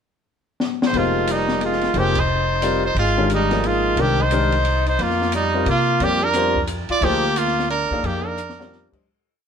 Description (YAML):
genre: modal jazz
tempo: 178 BPM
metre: 3/4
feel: swing 63% on 8ths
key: F dorian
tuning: A4 = 439 Hz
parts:
  - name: open jazz drum kit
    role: drums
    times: 0.6-9.0 s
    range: crash cymbal, hi-hat, kick drum, ride cymbal, snare drum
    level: -28 LUFS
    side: left 3 dB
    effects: none
  - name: brilliant trumpet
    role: melody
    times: 0.9-8.9 s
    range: Eb4 to D5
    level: -21 LUFS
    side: right 3 dB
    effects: none
  - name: clear baby grand piano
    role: accompaniment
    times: 0.9-9.0 s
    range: Eb3 to F5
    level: -24 LUFS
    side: left 3 dB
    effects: none
  - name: upright bass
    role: bass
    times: 0.9-9.0 s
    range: F1 to C3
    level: -24 LUFS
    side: equal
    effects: none
  - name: breathy alto saxophone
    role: second line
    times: 1.0-8.9 s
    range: G3 to F4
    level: -26 LUFS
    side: left 4 dB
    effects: none
room: moderate stone room reverb, RT60 1.1 s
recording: band playing live in one room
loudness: -17 LUFS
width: side -7 dB against mid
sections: 0.0-0.9 pickup bar; 0.9-9.1 A section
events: drum fill 0.6-0.9, 8.4-8.7; band accent 2.1; fade-out 7.4-9.1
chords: 0.0 N.C.; 0.9 Fm9; 5.0 Gm/F